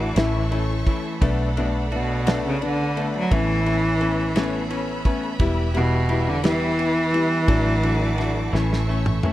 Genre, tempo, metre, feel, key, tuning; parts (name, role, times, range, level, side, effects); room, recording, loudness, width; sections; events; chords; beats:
six-eight pop ballad; 57 BPM (dotted quarters); 6/8; straight; A4 = 437 Hz
clear cello; melody; 0.0-9.3 s; B2 to A3; -23 LUFS; equal; digital delay
warm grand piano; accompaniment; 0.0-9.3 s; E3 to E4; -26 LUFS; left 4 dB
clear studio string section; sustained chords; 0.0-9.3 s; G4 to D6; -32 LUFS; equal
twelve-string electric guitar; arpeggios; 0.0-9.3 s; E3 to A4; -33 LUFS; right 6 dB; digital delay
vintage muted fingered electric bass; bass; 0.0-9.2 s; E1 to B1; -25 LUFS; equal
damped 70s drum kit; drums; 0.2-9.3 s; kick drum, ride cymbal, snare drum, toms; -23 LUFS; right 1 dB
little or no reverb; -19 LUFS; side -14 dB against mid
0.0-9.3 A section
drum fill 8.5-9.3
0.2 A; 1.2 Bm7; 3.3 Aadd9; 5.4 Em; 7.5 D/A; 8.5 A
0.17 | 1.22 2.27 | 3.32 4.36 | 5.40 6.44 | 7.48 8.53